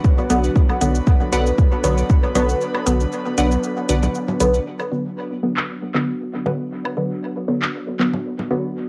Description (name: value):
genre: dub techno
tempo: 117 BPM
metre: 4/4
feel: swing 54% on 16ths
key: B minor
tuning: A4 = 441 Hz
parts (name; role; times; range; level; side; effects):
- airy breathy pad; sustained chords; 0.0-8.9 s; F#3 to B4; -30 LUFS; equal; chorus, sidechain pumping, cassette tape
- electronic kick drum; drums; 0.0-2.2 s; none; -17 LUFS; equal; overdrive, cassette tape
- soft vintage rhythm box; drums; 0.0-8.1 s; cabasa, handclaps, hi-hat; -28 LUFS; equal; low-pass filter on hats, cassette tape, low-pass filter on perc, low-pass filter on snare, dub echo
- congas and woodblock; percussion; 0.2-8.5 s; none; -32 LUFS; equal; sidechain pumping on perc, cassette tape, dub echo
- filtered dub chord stab; stabs; 0.3-8.8 s; D3 to B3; -24 LUFS; equal; chorus, phaser, vintage 12-bit sampler grit, sidechain pumping, cassette tape, dub echo
- soft dub sub bass; bass; 0.3-4.6 s; B1; -23 LUFS; equal; transformer saturation, sidechain pumping
- wavetable chord stab; riff; 1.3-4.0 s; B4 to F#5; -32 LUFS; equal; sidechain pumping, cassette tape, dub echo
room: moderate studio reverb, RT60 0.7 s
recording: home recording on cassette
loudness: -20 LUFS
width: mono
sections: 0.0-4.7 A section; 4.7-8.9 B section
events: break 2.6-4.7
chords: 0.0 Bm